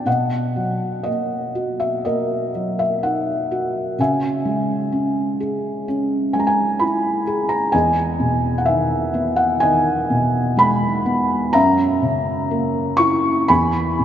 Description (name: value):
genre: classical, lyrical solo piano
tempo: 63 BPM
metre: 4/4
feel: uneven beats, rubato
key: B major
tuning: A4 = 440 Hz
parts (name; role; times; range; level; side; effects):
- felt-muted upright piano; solo; 0.0-14.0 s; E2 to C#6; -17 LUFS; equal; none
room: wet cathedral reverb, RT60 5.1 s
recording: in a vast, echoing space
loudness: -17 LUFS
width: side -10 dB against mid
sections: 0.1-14.0 A section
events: none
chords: 0.1 Bmaj7; 4.0 C#m; 7.7 Emaj7; 11.6 F#7; 13.5 E